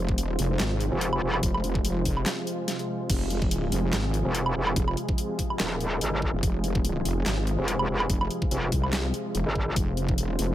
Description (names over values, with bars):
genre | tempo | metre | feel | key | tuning
heavy wobble dubstep | 144 BPM | 4/4 | swing 55% on 16ths, half-time | F minor | A4 = 439 Hz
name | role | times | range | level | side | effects
supersaw pad | sustained chords | 0.0-10.5 s | C3 to C5 | -31 LUFS | right 1 dB | sidechain pumping, low-pass filter
wobble bass | bass | 0.0-10.5 s | F1 to C2 | -27 LUFS | equal | chorus, overdrive
electronic kick drum | drums | 0.1-10.2 s | none | -27 LUFS | equal | overdrive, small room ambience
dubstep drum kit | drums | 0.2-10.5 s | crash cymbal, handclaps, hi-hat, snare drum, woodblock | -31 LUFS | right 1 dB | overdrive, small room ambience
metallic wobble bass | bass | 0.9-1.4, 4.3-9.7 s | Eb1 to Ab1 | -26 LUFS | equal | chorus, overdrive
room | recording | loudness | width
digital ambience | none | -24 LUFS | side -13 dB against mid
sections
0.0-10.5 A section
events
break 2.3-3.1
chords
0.0 Fm